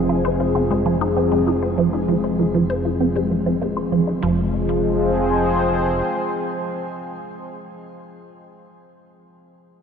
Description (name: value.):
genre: ambient, sequencer-driven space music.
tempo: 98 BPM.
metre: 4/4.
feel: straight.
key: F minor.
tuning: A4 = 440 Hz.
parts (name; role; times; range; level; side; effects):
sweeping resonant pad; sustained chords; 0.0-7.4 s; F3 to C5; -21 LUFS; left 1 dB; chorus, shimmer reverb.
thumb-piano-like synth pluck; arpeggios; 0.0-4.5 s; F3 to C5; -38 LUFS; left 2 dB; none.
resonant blip pluck; riff; 0.0-4.5 s; F3 to C5; -22 LUFS; right 2 dB; phaser, ping-pong delay, shimmer reverb.
fat analog bass; bass; 0.0-6.0 s; F1; -26 LUFS; equal; none.
room: wet cathedral reverb, RT60 6.0 s.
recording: in a vast, echoing space.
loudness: -18 LUFS.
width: side -7 dB against mid.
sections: 0.0-4.2 A section; 4.2-6.7 B section.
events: none.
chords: 0.0 Fm.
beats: 0.55 1.17 | 1.78 2.39 3.00 3.61 | 4.23 4.84 5.45 6.06.